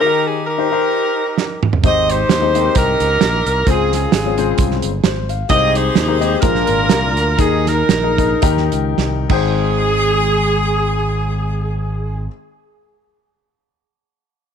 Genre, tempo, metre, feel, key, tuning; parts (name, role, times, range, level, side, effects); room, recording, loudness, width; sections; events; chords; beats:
uptempo gospel; 99-131 BPM; 4/4; swing 55% on 8ths; Ab major; A4 = 440 Hz
edgy saxophone section; melody; 0.0-12.3 s; C4 to Eb5; -17 LUFS; right 1 dB
warm grand piano; accompaniment; 0.0-12.3 s; Ab1 to G5; -21 LUFS; left 13 dB
warm soul drum kit; drums; 1.4-9.4 s; crash cymbal, hi-hat, kick drum, snare drum, toms; -18 LUFS; right 5 dB
modern bright fingered electric bass; bass; 1.8-12.3 s; G1 to Eb2; -20 LUFS; right 1 dB
light reverb; 1960s-style stereo; -14 LUFS; side -7 dB against mid
0.0-9.6 A section; 9.6-14.4 B section
drum fill 1.4-1.8, 9.0-9.6; slowing down 5.5-9.6
0.0 Eb; 1.8 Abmaj7; 3.7 Dbmaj7; 5.5 Abmaj7/C; 6.4 Bb7; 7.4 Ebsus4; 8.4 Eb; 9.3 Abmaj7
| 0.00 0.46 0.92 1.38 | 1.83 2.29 2.75 3.21 | 3.67 4.12 4.58 5.04 | 5.49 5.95 6.42 6.89 | 7.38 7.89 8.42 8.97 | 9.56 10.17 10.78 11.39 | 12.00